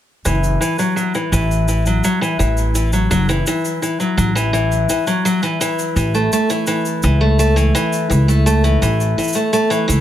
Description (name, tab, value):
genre	folktronica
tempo	84 BPM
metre	4/4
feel	straight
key	F# minor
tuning	A4 = 438 Hz
part	picked steel-string acoustic guitar	arpeggios	0.3-10.0 s	E3 to A3	-17 LUFS	left 1 dB	low-pass filter, ping-pong delay
part	upright bass	bass	0.3-10.0 s	F#1 to C#2	-16 LUFS	equal	none
part	shaker	drums	0.3-10.0 s	none	-28 LUFS	equal	none
room	light reverb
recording	none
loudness	-14 LUFS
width	side -11 dB against mid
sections	0.2-10.0 A section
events	none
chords	0.2 F#m7; 6.0 A